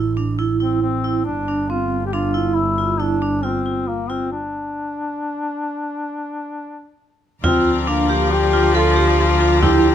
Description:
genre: contemporary instrumental, chamber music in an uneven meter.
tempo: 137 BPM.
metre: 7/4.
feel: straight.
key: unclear.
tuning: A4 = 440 Hz.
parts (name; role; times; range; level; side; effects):
vibraphone with medium hard mallets; arpeggios; 0.0-9.9 s; C4 to A4; -20 LUFS; right 3 dB; none.
clear double bass; bass; 0.0-9.9 s; G1 to D2; -22 LUFS; right 2 dB; none.
mellow duduk; melody; 0.6-9.9 s; Bb3 to G4; -22 LUFS; left 4 dB; none.
warm viola; second line; 7.4-9.9 s; F3; -21 LUFS; left 1 dB; none.
clear symphonic string section; sustained chords; 7.4-9.9 s; F3 to Bb5; -25 LUFS; left 5 dB; none.
frame drum; percussion; 7.4-9.8 s; none; -23 LUFS; equal; none.
room: light reverb.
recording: close, detailed microphones.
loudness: -17 LUFS.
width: side -10 dB against mid.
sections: 0.0-7.4 A section; 7.4-9.9 B section.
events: stop 4.3-7.4.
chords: 0.0 Am; 1.3 G5; 4.3 N.C.; 7.4 Bb/D.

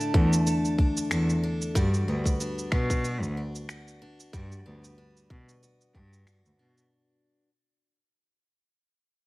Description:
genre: folktronica.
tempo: 93 BPM.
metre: 4/4.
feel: swing 56% on 16ths.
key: unclear.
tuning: A4 = 440 Hz.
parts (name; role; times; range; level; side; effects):
mellow concert flute; melody; 0.0-1.1 s; A5; -37 LUFS; right 7 dB; digital delay.
picked steel-string acoustic guitar; arpeggios; 0.0-7.5 s; D3 to A4; -32 LUFS; left 1 dB; digital delay.
electronic cabasa and finger snaps; drums; 0.0-6.9 s; none; -35 LUFS; right 1 dB; studio reverb.
clear cello; bass; 0.1-6.7 s; D2 to B2; -28 LUFS; equal; none.
electronic kick drum; drums; 0.1-6.1 s; none; -25 LUFS; equal; studio reverb.
room: light reverb, small room ambience.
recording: vinyl crackle.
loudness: -24 LUFS.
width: side -20 dB against mid.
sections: 0.0-6.9 A section.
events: fade-out 0.0-6.9.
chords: 0.0 Dsus2; 1.8 Gmaj7.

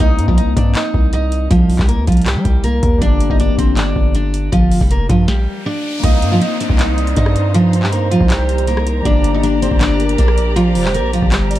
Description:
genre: hip hop, trap.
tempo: 159 BPM.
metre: 4/4.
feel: half-time.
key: C minor.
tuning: A4 = 442 Hz.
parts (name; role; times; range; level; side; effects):
picked steel-string acoustic guitar; melody; 0.0-11.6 s; F3 to Eb5; -18 LUFS; right 2 dB; low-pass filter, tape echo.
concert harp; accompaniment; 0.0-11.6 s; G3 to Eb4; -24 LUFS; left 8 dB; low-pass filter.
distorted 808-style bass; bass; 0.0-11.6 s; F1 to G3; -17 LUFS; equal; distortion.
booming analog drum machine; drums; 0.0-11.6 s; handclaps, hi-hat, kick drum, rim click, snare drum; -16 LUFS; equal; vintage 12-bit sampler grit.
riser and downlifter; sound effects; 5.2-9.1 s; none; -30 LUFS; equal; none.
hollow clarinet-like synth lead; second line; 6.0-11.6 s; Bb4 to F5; -24 LUFS; right 5 dB; chorus, tape echo.
muted studio string section; sustained chords; 6.0-11.6 s; Eb4 to Bb5; -26 LUFS; right 1 dB; none.
room: digital ambience.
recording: none.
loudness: -12 LUFS.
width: side -14 dB against mid.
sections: 0.0-6.0 A section; 6.0-11.6 B section.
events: riser 5.2-6.0; stop 5.3-6.0.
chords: 0.0 Cm7; 3.0 Gm; 6.0 Cm7; 9.1 Gm.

